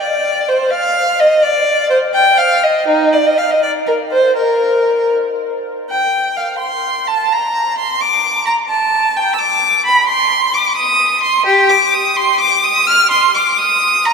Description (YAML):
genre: classical, baroque-style suite movement for unaccompanied violin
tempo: 85 BPM (dotted quarters)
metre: 6/8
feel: rubato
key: Bb major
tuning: A4 = 440 Hz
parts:
  - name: rich violin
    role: solo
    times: 0.0-14.1 s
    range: Eb4 to F6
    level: -11 LUFS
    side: equal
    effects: none
room: wet cathedral reverb, RT60 6.2 s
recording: in a vast, echoing space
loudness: -11 LUFS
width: side -5 dB against mid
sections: 0.0-5.9 A section; 5.9-14.1 B section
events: none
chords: none